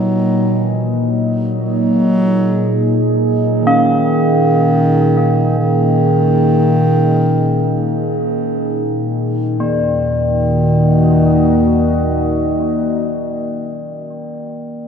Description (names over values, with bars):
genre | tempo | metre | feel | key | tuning
dark ambient drone | free time | none | none | Eb minor | A4 = 444 Hz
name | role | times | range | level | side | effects
dark bass clarinet | melody | 0.0-13.3 s | Eb3 to Gb3 | -18 LUFS | equal | analog delay
deep dark ambient pad | sustained chords | 0.0-13.8 s | Bb3 to Eb5 | -18 LUFS | right 1 dB | chorus, built-in reverb
bronze singing bowl | arpeggios | 0.0-13.3 s | Bb2 to Db4 | -21 LUFS | left 2 dB | analog delay
analog drone | drone | 0.0-13.3 s | Eb2 to Bb2 | -18 LUFS | equal | chorus
room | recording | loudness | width
moderate spring reverb, RT60 2.9 s | echo-heavy mix, cassette tape | -12 LUFS | side -7 dB against mid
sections
0.0-9.6 A section; 9.6-13.6 B section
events
fade-in on synth drone 0.0-9.6; fade-in on ambient pad 0.0-9.6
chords
0.0 Ebm